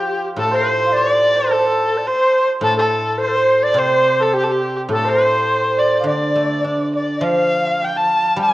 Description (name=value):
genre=chinese traditional, Chinese chamber ensemble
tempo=105 BPM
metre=4/4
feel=rubato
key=D yu mode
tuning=A4 = 440 Hz
part: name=clear erhu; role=melody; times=0.0-8.5 s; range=G4 to A5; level=-19 LUFS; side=equal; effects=none
part: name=hammered dulcimer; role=second line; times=0.0-8.5 s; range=F4 to A5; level=-21 LUFS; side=right 3 dB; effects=none
part: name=reedy large dizi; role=second line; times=0.0-8.5 s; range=G4 to A5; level=-20 LUFS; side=left 2 dB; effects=none
part: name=guzheng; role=accompaniment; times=0.0-8.5 s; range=A2 to D4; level=-22 LUFS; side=equal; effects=none
room=moderate recital hall reverb, RT60 1.6 s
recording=worn, warbling old tape, cassette tape, warbly pitch drift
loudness=-14 LUFS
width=side -16 dB against mid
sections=0.0-7.2 A section; 7.2-8.5 B section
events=none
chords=none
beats=| 0.40 0.96 1.52 2.08 | 2.64 3.20 3.77 4.34 | 4.91 5.48 6.07 6.65 | 7.24 7.82 8.40